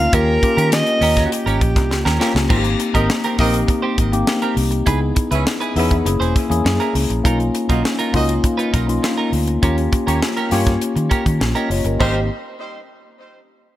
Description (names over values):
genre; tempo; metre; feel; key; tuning
polished 1980s jazz-funk pop; 101 BPM; 4/4; straight; Ab major; A4 = 439 Hz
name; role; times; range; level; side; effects
warm alto saxophone; melody; 0.0-2.2 s; Gb4 to E#5; -19 LUFS; right 1 dB; none
mellow tine electric piano; accompaniment; 0.0-12.3 s; A#3 to Eb5; -20 LUFS; left 3 dB; wide subtle chorus
clean electric guitar; riff; 0.0-12.2 s; C4 to C5; -25 LUFS; right 4 dB; lush chorus
vintage muted fingered electric bass; bass; 0.0-12.3 s; Fb1 to Eb3; -20 LUFS; equal; none
tight funk drum kit; drums; 0.1-12.1 s; crash cymbal, hi-hat, kick drum, snare drum; -20 LUFS; equal; gated reverb
dark horn section; second line; 2.9-12.2 s; G3 to Fb5; -26 LUFS; right 1 dB; digital delay
room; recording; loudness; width
light reverb, small room reverb; bright 1980s-style digital production; -15 LUFS; side -14 dB against mid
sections
0.0-2.5 A section; 2.5-12.0 B section; 12.0-13.8 C section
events
drum fill 1.9-2.5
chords
0.1 Eb7; 2.5 Abmaj9; 4.9 Dbm7; 6.1 Gb9; 7.3 Bmaj9#11; 9.6 Eb7; 12.0 Abmaj9